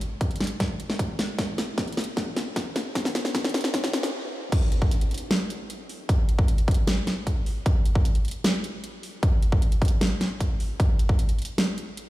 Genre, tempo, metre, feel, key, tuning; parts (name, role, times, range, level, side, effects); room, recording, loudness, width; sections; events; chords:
future bass; 153 BPM; 4/4; half-time
dubstep drum kit; drums; 0.0-12.1 s; crash cymbal, hi-hat, snare drum; -28 LUFS; equal
electronic kick drum; drums; 0.2-11.2 s; -23 LUFS; equal
light reverb, digital ambience; played on a big sound system in a bare room, large studio reverb, high-pass filter; -23 LUFS; side -17 dB against mid
0.0-4.5 A section; 4.5-12.1 B section
build-up 0.0-4.5; drum fill 0.0-4.1; stop 4.1-4.5; drop 4.5-12.1